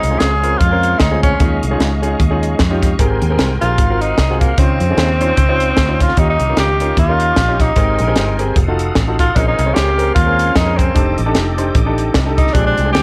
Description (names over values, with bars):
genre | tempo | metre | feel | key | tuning
uptempo gospel | 151 BPM | 4/4 | swing 57% on 8ths | unclear | A4 = 443 Hz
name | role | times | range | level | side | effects
breathy tenor saxophone | melody | 0.0-13.0 s | Bb3 to Ab4 | -19 LUFS | equal | none
clear upright piano | accompaniment | 0.0-13.0 s | Ab2 to Db5 | -23 LUFS | equal | none
bright tonewheel organ | sustained chords | 0.0-13.0 s | Ab3 to Eb6 | -28 LUFS | equal | fast rotary speaker, chorus vibrato
fingered electric bass | bass | 0.0-13.0 s | F1 to F2 | -20 LUFS | equal | none
crisp fusion drum kit | drums | 0.0-13.0 s | hi-hat, kick drum, snare drum | -19 LUFS | equal | none
mellow French horn section | sustained chords | 9.4-13.0 s | F3 to Eb4 | -32 LUFS | equal | none
room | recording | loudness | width
light reverb, small room ambience | none | -14 LUFS | mono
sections
0.0-13.0 A section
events
none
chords
0.0 Dbmaj7; 1.4 Eb9sus4; 3.0 Abmaj9; 3.8 Ab13; 4.6 Dbmaj9; 6.2 Eb9; 7.8 Abmaj9; 8.6 F7b9; 9.4 Bbm9; 11.0 F13